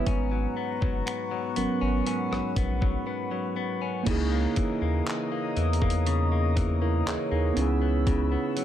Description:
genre	contemporary R&B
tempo	60 BPM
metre	4/4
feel	straight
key	C# dorian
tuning	A4 = 441 Hz
part	mellow tine electric piano	accompaniment	0.0-8.6 s	F#3 to C#5	-30 LUFS	right 6 dB	none
part	chorused pulse-width pad	sustained chords	0.0-8.6 s	B3 to E6	-34 LUFS	left 1 dB	sidechain pumping
part	direct-recorded clean electric guitar	arpeggios	0.0-8.6 s	G#2 to C#4	-32 LUFS	left 9 dB	tape echo
part	round analog bass	bass	0.1-8.4 s	F#1 to E2	-27 LUFS	equal	none
part	dusty soul sampler-style drum kit	drums	0.1-8.6 s	crash cymbal, finger snaps, handclaps, hi-hat, kick drum, rim click	-30 LUFS	equal	none
room	little or no reverb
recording	none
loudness	-24 LUFS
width	side -11 dB against mid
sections	0.0-4.1 A section; 4.1-8.6 B section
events	tine electric piano solo 0.0-4.1; break 3.1-4.1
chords	0.1 G#m11; 4.1 C#m69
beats	| 0.07 1.07 2.07 3.07 | 4.07 5.07 6.07 7.07 | 8.07

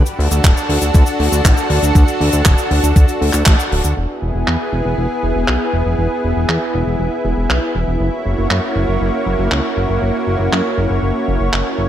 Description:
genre	italo disco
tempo	119 BPM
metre	4/4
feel	straight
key	unclear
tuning	A4 = 440 Hz
part	lush unison pad	sustained chords	0.0-11.9 s	A#3 to C#5	-18 LUFS	equal	chorus
part	fat analog bass	bass	0.0-11.9 s	D1 to F#2	-17 LUFS	equal	tube saturation
part	tight funk drum kit	drums	0.1-11.6 s	cabasa, handclaps, hi-hat	-20 LUFS	equal	low-pass filter on hats, low-pass filter on perc, low-pass filter on snare, low-pass filter on room, gated reverb
part	electronic kick drum	drums	0.4-3.6 s	none	-10 LUFS	equal	overdrive
room	small room ambience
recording	none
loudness	-13 LUFS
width	side -11 dB against mid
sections	0.0-4.0 A section; 4.0-11.9 B section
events	band accent 3.5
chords	0.0 D; 4.0 E; 8.0 F#7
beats	0.44 0.94 1.45 | 1.95 2.46 2.96 3.47 | 3.97 4.47 4.98 5.48 | 5.99 6.49 7.00 7.50 | 8.00 8.51 9.01 9.52 | 10.02 10.52 11.03 11.53

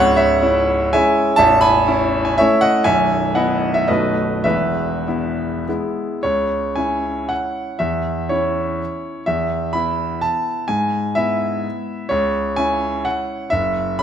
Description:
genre	classical, romantic triple-time dance for piano with dotted rhythms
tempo	94-136 BPM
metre	3/4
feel	rubato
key	E major, C# minor from 6.2 s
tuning	A4 = 440 Hz
part	bright grand piano	solo	0.0-14.0 s	A0 to B5	-16 LUFS	equal	none
room	moderate recital hall reverb, RT60 1.6 s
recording	none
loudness	-16 LUFS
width	side -9 dB against mid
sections	0.0-6.2 A section; 6.2-14.0 B section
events	none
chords	0.0 C#m; 1.4 A; 2.9 E/B; 3.9 B7; 4.4 E; 6.2 C#m; 7.8 C#m/E; 9.3 E5; 10.7 E/G#; 12.1 C#m; 13.5 F#7(no3)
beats	0.43 0.93 | 1.40 1.88 2.38 | 2.86 3.35 3.88 | 4.45 5.07 5.67 | 6.24 6.77 7.31 | 7.80 8.30 8.80 | 9.27 9.74 10.22 | 10.67 11.15 11.65 | 12.11 12.57 13.06 | 13.53 14.01

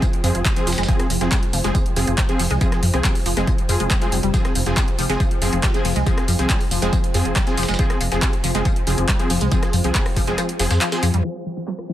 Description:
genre	driving peak-time techno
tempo	139 BPM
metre	4/4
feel	straight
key	F minor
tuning	A4 = 440 Hz
part	resonant blip pluck	riff	0.0-11.9 s	F3 to F4	-26 LUFS	left 1 dB	phaser, wide subtle chorus, sidechain pumping, dub echo
part	rave stab	stabs	0.0-11.0 s	F3 to Ab4	-25 LUFS	equal	chorus, built-in reverb, vintage 12-bit sampler grit, sidechain pumping, dub echo
part	dusty soul sampler-style drum kit	drums	0.0-11.9 s	hi-hat, snare drum, tambourine	-32 LUFS	right 1 dB	high-pass filter on snare, low-pass filter on snare, high-pass filter on perc, low-pass filter on perc, high-pass filter on hats, low-pass filter on hats
part	electronic kick drum	drums	0.0-10.3 s	none	-21 LUFS	equal	overdrive
part	punchy analog drum machine	drums	0.0-11.9 s	handclaps, hi-hat, rim click	-26 LUFS	equal	overdrive
part	granular cloud pad	texture	0.0-11.9 s	F4 to G5	-32 LUFS	right 3 dB	built-in reverb, sidechain pumping
part	dark detuned saw bass	bass	0.2-11.2 s	F1 to F2	-21 LUFS	equal	sidechain pumping
room	digital ambience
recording	low-pass filter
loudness	-17 LUFS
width	side -13 dB against mid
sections	0.0-11.2 A section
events	drop 0.0-11.2; kick drops out 10.4-11.2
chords	0.0 Fm; 11.2 F5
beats	0.02 0.45 | 0.89 1.32 1.75 2.18 | 2.61 3.04 3.48 3.91 | 4.34 4.77 5.20 5.63 | 6.07 6.50 6.93 7.36 | 7.79 8.22 8.65 9.09 | 9.52 9.95 10.38 10.81 | 11.24 11.68

